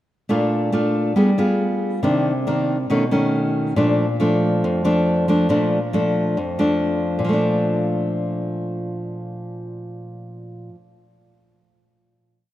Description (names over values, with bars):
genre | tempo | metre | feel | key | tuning
bossa nova | 138 BPM | 4/4 | straight | Bb major | A4 = 440 Hz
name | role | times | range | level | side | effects
nylon-string guitar | solo | 0.3-10.8 s | F2 to Ab4 | -18 LUFS | equal | none
room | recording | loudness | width
moderate plate reverb, RT60 3.7 s | rough home demo mix | -18 LUFS | side -14 dB against mid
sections
0.3-7.2 A section; 7.2-10.7 final chord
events
none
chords
0.3 Bbmaj7; 1.2 G7b9; 2.0 Cm9; 2.9 B9; 3.8 Bbmaj7